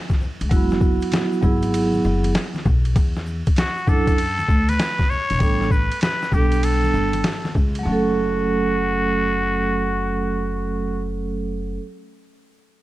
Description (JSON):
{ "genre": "hip hop, jazz-hop", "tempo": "98 BPM", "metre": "4/4", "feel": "swing 65% on 16ths", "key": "F# phrygian", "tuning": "A4 = 439 Hz", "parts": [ { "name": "boom bap sampler-style drum kit", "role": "drums", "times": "0.1-7.8 s", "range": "hi-hat, kick drum, ride cymbal, snare drum", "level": "-21 LUFS", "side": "left 1 dB", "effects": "vintage 12-bit sampler grit" }, { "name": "congas and tube shaker", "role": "percussion", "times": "0.1-8.1 s", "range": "none", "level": "-36 LUFS", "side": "left 3 dB", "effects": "none" }, { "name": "upright bass", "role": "bass", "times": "0.4-11.8 s", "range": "E1 to F#2", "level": "-24 LUFS", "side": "equal", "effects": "none" }, { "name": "vibraphone with soft mallets", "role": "accompaniment", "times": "0.5-11.8 s", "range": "F#3 to A4", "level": "-22 LUFS", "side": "right 3 dB", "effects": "none" }, { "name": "trumpet with straight mute", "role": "melody", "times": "3.6-11.1 s", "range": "F#4 to C#5", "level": "-24 LUFS", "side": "left 1 dB", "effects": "none" } ], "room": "light reverb, studio reverb", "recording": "none", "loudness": "-18 LUFS", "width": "side -16 dB against mid", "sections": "0.0-7.9 A section; 7.9-10.3 B section", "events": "none", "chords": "0.0 F#9sus4; 3.0 E9sus4; 5.4 A9sus4; 7.9 F#m", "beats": "| 0.51 1.12 1.73 2.34 | 2.96 3.57 4.18 4.79 | 5.41 6.02 6.63 7.24 | 7.85 8.47 9.08 9.69" }